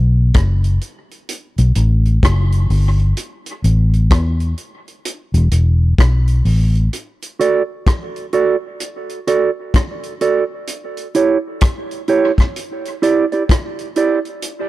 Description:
dub reggae; 64 BPM; 4/4; swing 62% on 16ths; A4 = 440 Hz
vintage muted fingered electric bass; bass; 0.0-6.9 s; E1 to E2; -12 LUFS; left 1 dB
vintage drum kit; drums; 0.3-14.7 s; hi-hat, kick drum, rim click; -17 LUFS; equal
mellow electric guitar; accompaniment; 7.4-14.2 s; E4 to D5; -17 LUFS; right 5 dB; high-pass filter, dub echo
little or no reverb; dry, close 1970s-style studio recording; -14 LUFS; side -16 dB against mid
0.0-6.9 A section; 6.9-14.7 B section
break 0.0-6.9
0.0 B5; 3.2 A5; 5.0 E5; 6.9 F#m; 10.7 Em6; 12.6 Em7

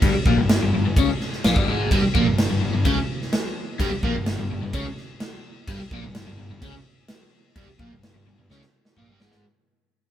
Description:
quiet-loud alternative rock; 128 BPM; 4/4; straight; A4 = 441 Hz
overdriven electric guitar; riff; 0.0-9.4 s; G2 to C#4; -24 LUFS; left 4 dB; phaser
fuzz picked electric bass; bass; 0.0-9.4 s; G1 to C#2; -27 LUFS; equal; overdrive
big rock drum kit; drums; 0.0-9.4 s; crash cymbal, kick drum, snare drum, toms; -23 LUFS; right 1 dB
overdriven semi-hollow guitar; riff; 1.9-9.4 s; G2 to C#4; -28 LUFS; right 4 dB
light reverb; band playing live in one room; -19 LUFS; side -11 dB against mid
0.0-9.4 A section
fade-out 0.0-9.4; drum fill 8.5-9.4
0.0 Gm

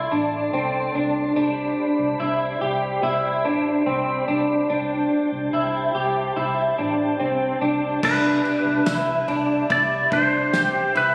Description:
dream pop; 72 BPM; 4/4; straight; C major; A4 = 442 Hz
mellow tonewheel organ; sustained chords; 0.0-11.1 s; B2 to C6; -32 LUFS; equal; slow rotary speaker
electric guitar through a small old amp; arpeggios; 0.0-11.1 s; C4 to G4; -24 LUFS; equal; ensemble chorus, digital delay
vintage muted fingered electric bass; bass; 0.0-11.1 s; A1 to C2; -35 LUFS; equal
clean lap steel guitar; melody; 8.0-11.1 s; B4 to D5; -23 LUFS; equal; digital delay
loose indie drum kit; drums; 8.0-11.1 s; crash cymbal, kick drum, ride cymbal, snare drum, tambourine; -32 LUFS; equal
wet concert hall reverb, RT60 2.0 s; recorded on a phone in the room, studio reverb, compression; -22 LUFS; mono
0.0-8.0 A section; 8.0-11.1 B section
0.0 D7(no3); 1.4 Am11/C (rootless); 4.7 Gsus24/C; 8.0 Cmaj7

